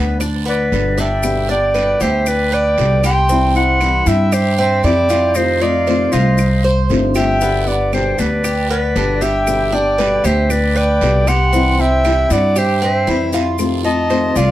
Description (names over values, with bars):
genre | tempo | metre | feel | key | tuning
latin, Cuban son and guajira | 117 BPM | 4/4 | straight | G major | A4 = 440 Hz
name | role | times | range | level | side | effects
flamenco guitar | accompaniment | 0.0-14.5 s | B2 to G4 | -20 LUFS | left 3 dB | none
Cuban tres | arpeggios | 0.0-14.5 s | B3 to C5 | -22 LUFS | right 2 dB | tape echo
upright bass | bass | 0.0-14.5 s | G1 to G2 | -18 LUFS | equal | none
claves | percussion | 0.2-13.8 s | none | -29 LUFS | right 7 dB | none
guiro | percussion | 0.2-14.5 s | none | -31 LUFS | right 7 dB | none
maracas | percussion | 0.2-14.5 s | none | -32 LUFS | left 6 dB | none
clear clarinet | melody | 0.5-14.5 s | B4 to G5 | -17 LUFS | right 1 dB | none
breathy bright jazz flute | second line | 0.5-14.5 s | D5 to C6 | -24 LUFS | left 3 dB | none
room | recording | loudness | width
light reverb | none | -13 LUFS | side -14 dB against mid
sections
0.0-1.2 A section; 1.2-14.5 B section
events
none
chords
0.0 G; 3.3 C; 5.4 F7; 7.4 G; 11.5 C; 13.6 F7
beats
0.21 0.72 | 1.24 1.75 2.27 2.78 | 3.29 3.81 4.32 4.84 | 5.35 5.87 6.38 6.90 | 7.41 7.93 8.44 8.96 | 9.47 9.99 10.50 11.02 | 11.53 12.04 12.56 13.07 | 13.59 14.10